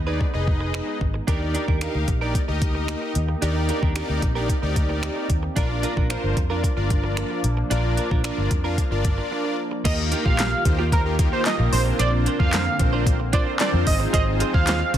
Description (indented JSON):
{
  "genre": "dance-pop",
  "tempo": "112 BPM",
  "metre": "4/4",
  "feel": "straight",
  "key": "Eb major",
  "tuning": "A4 = 440 Hz",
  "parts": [
    { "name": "sweeping resonant pad", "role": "sustained chords", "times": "0.0-15.0 s", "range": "D3 to G4", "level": "-32 LUFS", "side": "equal", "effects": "chorus, sidechain pumping" },
    { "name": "vintage muted fingered electric bass", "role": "bass", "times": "0.0-15.0 s", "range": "F1 to F2", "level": "-24 LUFS", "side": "equal", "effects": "sidechain pumping" },
    { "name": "big bright polysynth", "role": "accompaniment", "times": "0.1-15.0 s", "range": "Bb3 to F5", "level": "-27 LUFS", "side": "left 1 dB", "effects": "sidechain pumping" },
    { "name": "direct-recorded clean electric guitar", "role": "riff", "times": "0.1-15.0 s", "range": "Bb3 to C5", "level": "-31 LUFS", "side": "right 6 dB", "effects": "analog chorus" },
    { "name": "smooth R&B drum kit", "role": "drums", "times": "0.2-15.0 s", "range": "crash cymbal, finger snaps, handclaps, hi-hat, kick drum, snare drum", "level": "-23 LUFS", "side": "equal", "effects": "soft clipping on snare" },
    { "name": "octave-doubled lead", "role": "melody", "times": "9.9-14.9 s", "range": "Bb4 to F5", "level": "-26 LUFS", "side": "right 3 dB", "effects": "chorus, sidechain pumping" }
  ],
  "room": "light reverb",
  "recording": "dense, heavily limited modern master",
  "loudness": "-20 LUFS",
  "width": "side -11 dB against mid",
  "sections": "0.0-9.9 A section; 9.9-15.0 B section",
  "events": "break 9.3-9.9; drop 9.9-15.0",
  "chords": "0.0 Abm; 1.3 Ebmaj7; 5.6 Bb; 9.9 Ebadd9; 11.7 Bbadd9; 13.9 Ab6",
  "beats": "0.21 0.74 | 1.28 1.82 2.35 2.89 | 3.42 3.96 4.49 5.03 | 5.57 6.10 6.64 7.17 | 7.71 8.24 8.78 9.32 | 9.85 10.39 10.92 11.46 | 11.99 12.53 13.07 13.60 | 14.14 14.67"
}